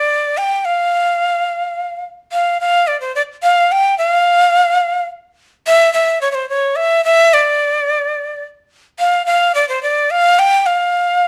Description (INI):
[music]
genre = andean folk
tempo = 72 BPM (dotted quarters)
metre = 6/8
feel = straight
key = unclear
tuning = A4 = 441 Hz
[part]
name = breathy bright quena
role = solo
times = 0.0-11.3 s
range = C5 to G5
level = -15 LUFS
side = equal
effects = none
[sound]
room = moderate studio reverb, RT60 0.6 s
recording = dark, warm production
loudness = -15 LUFS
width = mono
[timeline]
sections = 0.0-9.0 A section; 9.0-11.3 A section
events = none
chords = none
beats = | 0.65 1.49 | 2.32 3.15 | 3.99 4.82 | 5.66 6.49 | 7.32 8.15 | 8.99 9.82 | 10.65